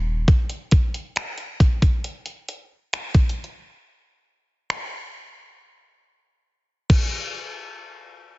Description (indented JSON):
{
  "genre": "R&B",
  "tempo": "68 BPM",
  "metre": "4/4",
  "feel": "straight",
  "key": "none",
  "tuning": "none",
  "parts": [
    { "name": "detuned 8-bit digital drum machine", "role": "drums", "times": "0.3-7.1 s", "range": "crash cymbal, finger snaps, hi-hat, kick drum", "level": "-19 LUFS", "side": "equal", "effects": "none" }
  ],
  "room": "little or no reverb",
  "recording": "heavily compressed radio sound, multiband compression, nothing above 7.7 kHz",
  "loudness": "-20 LUFS",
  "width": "side -21 dB against mid",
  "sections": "0.0-7.3 A section; 7.3-8.4 B section",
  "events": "drum fill 6.5-7.3",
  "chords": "none"
}